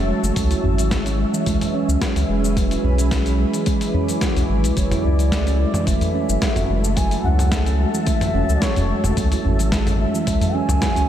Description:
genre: organic downtempo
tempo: 109 BPM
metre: 4/4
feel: straight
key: F# minor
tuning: A4 = 440 Hz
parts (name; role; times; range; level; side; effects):
- granular cloud pad; sustained chords; 0.0-11.1 s; C#4 to D6; -27 LUFS; equal; built-in reverb, sidechain pumping
- handpan; arpeggios; 0.0-11.1 s; E3 to F#4; -23 LUFS; right 3 dB; analog delay
- warm sub bass; bass; 0.0-11.1 s; E1 to C#2; -20 LUFS; equal; sidechain pumping
- dusty soul sampler-style drum kit; drums; 0.2-11.1 s; hi-hat, shaker, snare drum, toms; -26 LUFS; equal; none
- electronic kick drum; drums; 0.4-10.9 s; none; -23 LUFS; equal; none
- udu; percussion; 0.6-10.5 s; none; -26 LUFS; left 1 dB; none
- mellow bansuri; melody; 4.8-11.1 s; C#5 to G#5; -27 LUFS; left 1 dB; analog delay
room: moderate cathedral reverb, RT60 6.3 s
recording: dreamy mix soaked in reverb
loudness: -17 LUFS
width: side -10 dB against mid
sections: 0.0-11.1 A section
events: none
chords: 0.4 C#m7; 2.6 E7; 4.8 F#m7

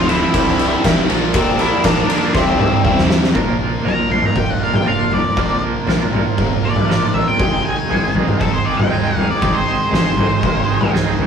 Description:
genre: quiet-loud alternative rock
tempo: 119 BPM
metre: 4/4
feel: straight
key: unclear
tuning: A4 = 440 Hz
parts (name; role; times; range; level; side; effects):
- octave-fuzz lead guitar; melody; 0.0-10.9 s; C4 to C6; -20 LUFS; left 1 dB; distortion
- crunchy overdriven guitar; riff; 0.0-3.3 s; C2 to Bb4; -19 LUFS; right 2 dB; phaser
- distorted electric guitar; riff; 0.0-11.3 s; C2 to Bb4; -26 LUFS; left 5 dB; overdrive
- growling picked electric bass; bass; 0.0-11.3 s; C1 to C2; -27 LUFS; left 1 dB; overdrive
- oversized low-tuned drum kit; drums; 0.1-11.3 s; kick drum, ride cymbal, snare drum, toms; -16 LUFS; equal; none
- twangy electric guitar; arpeggios; 3.3-11.3 s; Ab2 to Bb4; -22 LUFS; right 4 dB; tremolo
room: moderate small room reverb, RT60 0.6 s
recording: rough rehearsal-room recording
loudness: -14 LUFS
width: side -7 dB against mid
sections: 0.0-3.4 A section; 3.4-11.3 B section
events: drum fill 2.3-3.4; lead electric guitar solo 3.4-11.3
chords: 0.3 C; 1.1 Bbadd9; 2.3 C; 3.4 Bb; 7.4 Ab

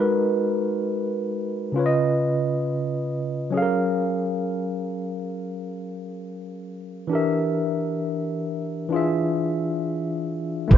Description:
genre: lo-fi hip hop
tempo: 67 BPM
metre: 4/4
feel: swing 56% on 16ths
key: unclear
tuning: A4 = 439 Hz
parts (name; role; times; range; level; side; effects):
- tine electric piano; accompaniment; 0.0-10.8 s; C#3 to E#5; -23 LUFS; equal; slow stereo tremolo, cassette tape, plate reverb
- upright bass; bass; 10.7-10.8 s; A1; -14 LUFS; equal; none
- electronic kick drum; drums; 10.7-10.8 s; none; -12 LUFS; right 1 dB; none
room: moderate small room reverb, RT60 0.6 s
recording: rough home demo mix, nothing above 7.5 kHz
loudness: -23 LUFS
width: side -10 dB against mid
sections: 0.0-10.7 A section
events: none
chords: 0.0 G#m9; 1.8 C#9; 3.5 F#maj9; 7.1 Em7b5; 8.9 E7b9

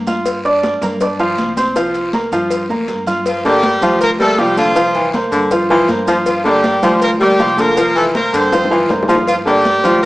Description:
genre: latin, salsa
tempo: 160 BPM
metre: 4/4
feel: straight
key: unclear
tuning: A4 = 435 Hz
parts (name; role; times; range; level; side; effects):
- upright bass; bass; 0.0-10.1 s; C2 to G2; -26 LUFS; equal; none
- clear grand piano; accompaniment; 0.1-10.1 s; F3 to F6; -16 LUFS; right 1 dB; none
- congas; percussion; 0.1-10.0 s; none; -24 LUFS; equal; none
- guiro; percussion; 0.1-10.1 s; none; -33 LUFS; left 2 dB; none
- maracas; percussion; 0.1-10.0 s; none; -36 LUFS; right 4 dB; none
- cowbell and bongos; percussion; 0.3-10.1 s; none; -23 LUFS; left 3 dB; none
- brilliant horn section; melody; 3.3-10.1 s; F3 to C5; -15 LUFS; equal; none
- breathy baritone saxophone; second line; 3.4-10.0 s; D3 to G3; -17 LUFS; left 1 dB; none
room: moderate large studio reverb, RT60 1.1 s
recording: small speaker sound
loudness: -12 LUFS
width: side -18 dB against mid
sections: 0.0-3.3 A section; 3.3-10.1 B section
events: drum fill 2.7-3.3, 8.5-9.3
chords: 0.3 Gm7; 1.8 C7sus4; 3.3 Gm7; 4.8 C7sus4; 6.3 Gm7; 7.8 C7sus4; 9.3 Gm7

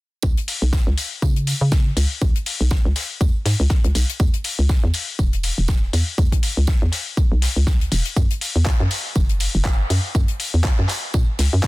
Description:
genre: deep house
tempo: 121 BPM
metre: 4/4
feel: swing 57% on 16ths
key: C# dorian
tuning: A4 = 441 Hz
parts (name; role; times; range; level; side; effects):
- hollow knocking FM bass; bass; 0.2-11.6 s; E1 to C#3; -19 LUFS; equal; sidechain pumping
- electronic kick drum; drums; 0.2-11.7 s; none; -18 LUFS; equal; none
- tight funk drum kit; drums; 0.2-11.7 s; hi-hat, snare drum, tambourine; -32 LUFS; right 2 dB; sidechain pumping on hats, high-pass filter on hats, high-pass filter on snare, sidechain pumping on perc, high-pass filter on perc, high-pass filter on room
- dusty soul sampler-style drum kit; drums; 0.5-11.7 s; handclaps, hi-hat; -26 LUFS; left 4 dB; none
room: small room ambience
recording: dense, heavily limited modern master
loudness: -17 LUFS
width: side -20 dB against mid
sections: 0.2-11.7 A section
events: none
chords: none

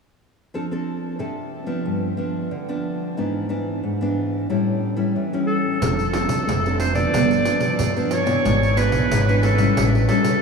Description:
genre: samba and choro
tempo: 91 BPM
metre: 4/4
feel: straight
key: unclear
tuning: A4 = 439 Hz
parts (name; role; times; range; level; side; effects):
- nylon-string guitar; accompaniment; 0.5-10.4 s; G2 to A4; -22 LUFS; left 1 dB; none
- bright clarinet; melody; 5.5-10.4 s; A4 to D5; -22 LUFS; equal; none
- upright bass; bass; 5.8-10.1 s; F1 to G2; -22 LUFS; right 1 dB; none
- pandeiro; percussion; 5.8-10.4 s; none; -25 LUFS; right 5 dB; none
room: wet huge ambient reverb, RT60 8.0 s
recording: in a vast, echoing space, studio ambience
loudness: -19 LUFS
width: side -5 dB against mid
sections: 0.5-5.8 A section; 5.8-10.4 B section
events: none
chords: 0.5 F6; 1.9 G7; 3.2 E7/G#; 4.5 A7; 5.8 F6; 7.1 G7; 8.5 E7/G#; 9.8 A7

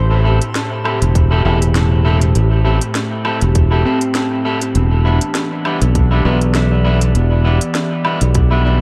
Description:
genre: ambient dub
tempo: 100 BPM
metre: 4/4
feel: swing 55% on 16ths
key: A minor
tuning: A4 = 438 Hz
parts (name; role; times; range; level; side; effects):
- warbly tape-like pad; sustained chords; 0.0-8.8 s; A2 to D5; -24 LUFS; equal; chorus, built-in reverb
- pedal steel guitar; arpeggios; 0.0-8.8 s; C4 to C6; -27 LUFS; equal; tape echo
- fingered electric bass; bass; 0.0-8.8 s; E1 to B1; -15 LUFS; equal; tube saturation
- electric guitar at the edge of break-up; stabs; 0.2-8.8 s; G3 to A4; -23 LUFS; equal; dub echo
- organic electronic drum kit; drums; 0.4-8.5 s; hi-hat, snare drum, woodblock; -26 LUFS; equal; dub echo
- electronic kick drum; drums; 1.2-8.5 s; none; -17 LUFS; equal; none
room: light reverb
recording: none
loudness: -15 LUFS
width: mono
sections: 0.0-8.8 A section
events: none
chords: 0.0 Am7; 4.8 Em7

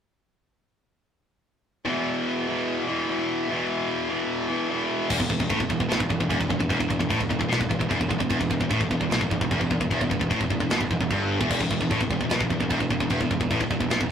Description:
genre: heavy metal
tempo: 150 BPM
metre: 4/4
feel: straight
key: unclear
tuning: A4 = 440 Hz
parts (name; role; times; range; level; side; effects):
- heavy high-gain guitar; riff; 1.9-14.1 s; E2 to E3; -28 LUFS; left 6 dB; distortion
- heavy high-gain guitar; riff; 1.9-14.1 s; E2 to E3; -28 LUFS; right 5 dB; distortion
- fuzz picked electric bass; bass; 5.1-14.1 s; E1 to B1; -29 LUFS; equal; overdrive
- tight metal drum kit; drums; 5.1-14.1 s; china cymbal, crash cymbal, kick drum, snare drum; -27 LUFS; equal; none
room: moderate small room ambience, RT60 0.5 s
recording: rough rehearsal-room recording, tube saturation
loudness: -22 LUFS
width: side -8 dB against mid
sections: 1.9-5.1 A section; 5.1-14.1 B section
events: none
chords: 1.9 E5

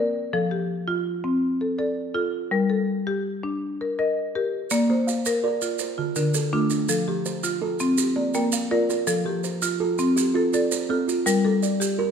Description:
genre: southern african traditional, mbira-style interlocking cycle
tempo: 110 BPM (dotted quarters)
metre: 12/8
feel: straight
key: unclear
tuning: A4 = 440 Hz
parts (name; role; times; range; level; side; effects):
- marimba with medium mallets; arpeggios; 0.0-12.1 s; D3 to G5; -23 LUFS; left 2 dB; none
- maracas; percussion; 4.7-12.0 s; none; -30 LUFS; right 8 dB; none
- kalimba; arpeggios; 4.9-12.1 s; D3 to F5; -27 LUFS; right 6 dB; none
room: moderate recital hall reverb, RT60 1.5 s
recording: none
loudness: -21 LUFS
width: side -7 dB against mid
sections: 0.0-12.1 A section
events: none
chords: 0.3 F; 2.5 Gm; 4.7 Bb; 5.8 Dm; 6.9 F; 8.0 Bb; 9.1 F; 11.3 Gm

